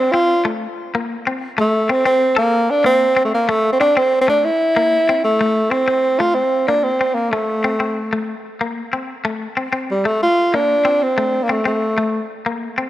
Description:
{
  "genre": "highlife",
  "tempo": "125 BPM (dotted quarters)",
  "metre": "12/8",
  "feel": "straight",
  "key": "unclear",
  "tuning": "A4 = 438 Hz",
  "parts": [
    { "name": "breathy tenor saxophone", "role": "melody", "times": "0.0-12.3 s", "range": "G3 to F4", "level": "-15 LUFS", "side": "right 1 dB", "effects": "none" },
    { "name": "clean electric guitar", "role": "accompaniment", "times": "0.0-12.9 s", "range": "A3 to A4", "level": "-22 LUFS", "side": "left 3 dB", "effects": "spring reverb" }
  ],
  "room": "moderate plate reverb, RT60 2.9 s",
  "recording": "none",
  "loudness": "-15 LUFS",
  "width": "side -14 dB against mid",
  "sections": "0.0-5.4 A section; 5.4-12.9 B section",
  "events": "none",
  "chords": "0.0 F; 0.6 Am; 2.5 Bbsus2; 3.5 Amadd11; 4.4 C; 5.4 Am; 6.4 Bbsus2; 7.3 Am; 9.3 Gsus4 (rootless); 10.2 Bbsus2; 11.2 Am"
}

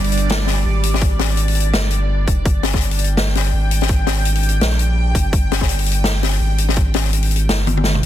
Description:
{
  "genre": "half-time drum and bass",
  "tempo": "167 BPM",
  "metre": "4/4",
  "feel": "swing 58% on 16ths, half-time",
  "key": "unclear",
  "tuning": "A4 = 440 Hz",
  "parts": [
    { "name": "bowed-like drone", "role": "sustained chords", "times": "0.0-8.1 s", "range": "G3 to G5", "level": "-26 LUFS", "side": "right 2 dB", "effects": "built-in reverb, phaser, vintage 12-bit sampler grit, sidechain pumping" },
    { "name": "saturated sub bass", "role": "bass", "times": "0.0-8.1 s", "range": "F1 to Bb1", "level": "-18 LUFS", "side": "equal", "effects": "none" },
    { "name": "swinging big-band drum kit", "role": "drums", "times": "0.0-8.1 s", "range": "hi-hat, snare drum, toms", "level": "-20 LUFS", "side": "left 3 dB", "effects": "soft clipping on snare" },
    { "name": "electronic kick drum", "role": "drums", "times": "1.0-6.8 s", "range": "none", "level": "-17 LUFS", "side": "equal", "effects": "overdrive" }
  ],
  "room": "small room reverb",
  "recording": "dense, heavily limited modern master",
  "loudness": "-15 LUFS",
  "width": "side -12 dB against mid",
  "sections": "0.0-8.1 A section",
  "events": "kick drops out 7.5-8.1; drum fill 7.7-8.1",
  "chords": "0.0 G5"
}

